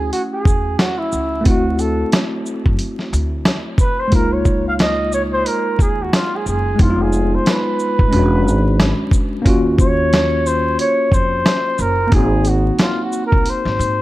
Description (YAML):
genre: hip hop, jazz-hop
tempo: 90 BPM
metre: 4/4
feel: swing 60% on 16ths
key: Db major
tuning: A4 = 440 Hz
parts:
  - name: breathy flugelhorn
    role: melody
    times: 0.0-14.0 s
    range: E4 to F5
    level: -20 LUFS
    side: right 1 dB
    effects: none
  - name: mellow tine electric piano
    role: accompaniment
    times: 0.0-14.0 s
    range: Ab3 to F#4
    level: -20 LUFS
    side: left 1 dB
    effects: medium stereo tremolo
  - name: upright bass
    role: bass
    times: 0.0-14.0 s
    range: E1 to Ab2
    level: -20 LUFS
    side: equal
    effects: none
  - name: dusty soul sampler-style drum kit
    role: drums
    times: 0.1-14.0 s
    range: hi-hat, kick drum, shaker, snare drum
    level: -17 LUFS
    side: equal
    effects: none
room: light reverb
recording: dark, warm production, vinyl crackle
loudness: -14 LUFS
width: side -16 dB against mid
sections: 0.0-14.0 A section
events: flugelhorn solo 0.0-14.0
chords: 0.0 Dmaj9 (rootless); 1.5 D9; 4.1 Db69; 6.8 Fm7b5; 8.1 E13; 9.5 Ebm9; 12.1 Ab7